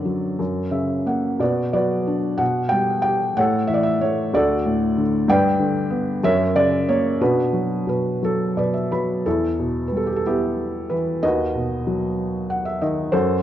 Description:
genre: classical, lyrical solo piano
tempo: 57-65 BPM (dotted quarters)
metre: 6/8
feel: rubato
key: B minor, E minor from 9.3 s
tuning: A4 = 440 Hz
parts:
  - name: felt-muted upright piano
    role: solo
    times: 0.0-13.4 s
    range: D2 to B5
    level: -19 LUFS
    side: equal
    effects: none
room: moderate concert hall reverb, RT60 2.0 s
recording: dark, warm production, nothing above 7.6 kHz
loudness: -19 LUFS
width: side -11 dB against mid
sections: 0.0-9.3 A section; 9.3-13.4 B section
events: felt piano fill 0.4-1.4, 8.2-9.3, 12.2-13.1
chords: 0.4 F#; 1.4 Bm; 2.4 Gmaj7/B; 3.4 A; 4.3 D; 5.3 G; 6.2 F#; 7.2 Bm; 9.3 Em; 11.2 B/D#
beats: 0.39 | 1.40 2.40 | 3.38 4.34 | 5.28 6.23 | 7.21 8.23 | 9.26 10.25 | 11.23 12.18 | 13.13

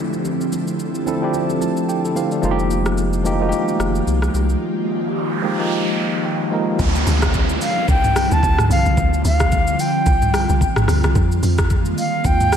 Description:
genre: amapiano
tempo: 110 BPM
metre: 4/4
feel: swing 58% on 16ths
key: D minor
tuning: A4 = 439 Hz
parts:
  - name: tine electric piano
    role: accompaniment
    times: 0.0-6.8 s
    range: F3 to A5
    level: -21 LUFS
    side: right 1 dB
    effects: medium stereo tremolo
  - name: ethereal airy pad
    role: sustained chords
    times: 0.0-12.6 s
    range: D3 to A4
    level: -24 LUFS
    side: equal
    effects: ensemble chorus, built-in reverb, sidechain pumping
  - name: downlifter and noise sweep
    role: sound effects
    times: 0.0-11.2 s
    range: none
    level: -27 LUFS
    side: right 2 dB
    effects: none
  - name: smooth R&B drum kit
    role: drums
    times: 0.1-12.6 s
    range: hi-hat, kick drum, rim click, shaker, toms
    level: -21 LUFS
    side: equal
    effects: none
  - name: congas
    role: percussion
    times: 0.2-4.5 s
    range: none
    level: -30 LUFS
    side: left 2 dB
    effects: none
  - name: warm sub bass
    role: bass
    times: 2.4-4.6 s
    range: F1 to C2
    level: -20 LUFS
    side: equal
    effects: none
  - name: deep log drum bass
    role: bass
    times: 6.8-12.6 s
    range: A1 to F2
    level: -18 LUFS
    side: equal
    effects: none
  - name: mellow silver concert flute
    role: melody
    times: 7.6-12.6 s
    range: F5 to A5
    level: -20 LUFS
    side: equal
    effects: ping-pong delay
room: moderate plate reverb, RT60 1.7 s, digital ambience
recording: dreamy mix soaked in reverb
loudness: -16 LUFS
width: side -8 dB against mid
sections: 0.0-6.8 A section; 6.8-12.6 B section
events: tine electric piano fill 1.3-2.4, 6.0-6.8; noise sweep 4.8-6.8; drop 6.8-12.6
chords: 0.0 Dm11; 2.4 Fm11; 6.8 Dm11; 11.2 Fm11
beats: | 0.25 0.79 1.34 1.88 | 2.43 2.97 3.52 4.07 | 4.61 5.16 5.70 6.25 | 6.79 7.34 7.88 8.43 | 8.97 9.52 10.06 10.61 | 11.16 11.70 12.25

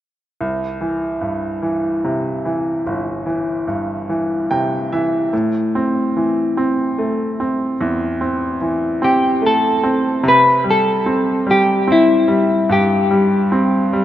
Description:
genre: six-eight pop ballad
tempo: 49 BPM (dotted quarters)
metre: 6/8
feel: straight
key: C major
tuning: A4 = 440 Hz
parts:
  - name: bright grand piano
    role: accompaniment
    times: 0.4-14.0 s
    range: G1 to G5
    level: -17 LUFS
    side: equal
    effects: none
  - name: semi-hollow electric guitar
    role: melody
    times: 9.0-13.9 s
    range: E4 to B4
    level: -14 LUFS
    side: left 1 dB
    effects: lush chorus, digital delay
room: wet lush hall reverb, RT60 2.7 s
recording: rough home demo mix, nothing above 7.5 kHz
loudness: -15 LUFS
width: side -12 dB against mid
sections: 0.4-10.2 A section; 10.2-14.0 B section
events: grand piano fill 4.1-5.3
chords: 0.4 C; 5.3 Am; 10.2 C5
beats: | 0.40 1.63 | 2.86 4.09 | 5.32 6.55 | 7.78 9.01 | 10.24 11.47 | 12.69 13.92

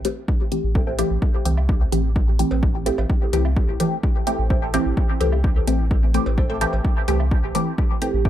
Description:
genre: dub techno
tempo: 128 BPM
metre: 4/4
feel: straight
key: A minor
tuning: A4 = 443 Hz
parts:
  - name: filtered dub chord stab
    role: stabs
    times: 0.0-8.3 s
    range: E3 to G4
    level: -23 LUFS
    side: equal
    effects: phaser, dub echo
  - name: electronic hi-hat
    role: drums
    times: 0.0-8.1 s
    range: none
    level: -32 LUFS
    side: left 1 dB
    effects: small room ambience
  - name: cowbell and woodblock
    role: percussion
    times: 0.1-7.6 s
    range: none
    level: -37 LUFS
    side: right 3 dB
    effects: overdrive, sidechain pumping on perc, small room ambience, dub echo
  - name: electronic kick drum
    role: drums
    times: 0.3-8.3 s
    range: none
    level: -21 LUFS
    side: equal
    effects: small room ambience
  - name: warm sub bass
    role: bass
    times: 0.6-8.3 s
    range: A1 to C2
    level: -22 LUFS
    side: equal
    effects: sidechain pumping
  - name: filtered dub chord stab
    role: riff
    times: 0.8-0.9, 4.5-8.3 s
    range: A4 to G5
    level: -34 LUFS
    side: right 2 dB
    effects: phaser, sidechain pumping, dub echo
room: light reverb, digital ambience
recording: dark, warm production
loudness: -18 LUFS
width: side -12 dB against mid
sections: 0.0-8.3 A section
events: none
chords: 0.0 Am7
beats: 0.28 | 0.75 1.22 1.69 2.16 | 2.63 3.10 3.57 4.03 | 4.50 4.97 5.44 5.91 | 6.38 6.85 7.32 7.78 | 8.25

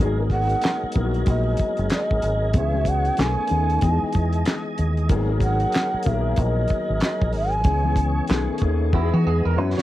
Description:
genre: R&B, neo-soul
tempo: 94 BPM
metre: 4/4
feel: swing 61% on 16ths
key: G# minor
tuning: A4 = 444 Hz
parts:
  - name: dark baby grand piano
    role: accompaniment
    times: 0.0-9.8 s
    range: D#3 to A#4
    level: -28 LUFS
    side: left 7 dB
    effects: cassette tape
  - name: tonewheel organ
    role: sustained chords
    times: 0.0-9.8 s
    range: D#3 to D#5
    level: -31 LUFS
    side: right 2 dB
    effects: slow rotary speaker, overdrive, chorus vibrato, cassette tape
  - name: deep dub fingered electric bass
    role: bass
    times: 0.0-9.7 s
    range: F#1 to E3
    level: -22 LUFS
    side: equal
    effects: none
  - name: mellow hollow long shakuhachi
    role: melody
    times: 0.3-8.6 s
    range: D#5 to G#5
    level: -26 LUFS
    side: right 2 dB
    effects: cassette tape, analog delay
  - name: damped 70s drum kit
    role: drums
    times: 0.3-9.8 s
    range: handclaps, hi-hat, kick drum, snare drum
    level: -22 LUFS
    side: equal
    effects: cassette tape
  - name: electric guitar through a small old amp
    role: second line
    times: 8.9-9.8 s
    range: E4 to C#5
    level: -28 LUFS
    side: right 9 dB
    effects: cassette tape
room: light reverb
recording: home recording on cassette, vinyl crackle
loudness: -19 LUFS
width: side -15 dB against mid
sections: 0.0-9.8 A section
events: drum fill 8.9-9.8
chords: 0.0 G#m9; 2.5 C#m7; 3.2 B13; 3.8 Emaj7; 5.1 G#m9; 7.7 C#m7; 8.3 B13; 8.9 Emaj7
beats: 0.63 1.27 1.91 | 2.54 3.18 3.82 4.46 | 5.10 5.74 6.37 7.01 | 7.65 8.29 8.93 9.56

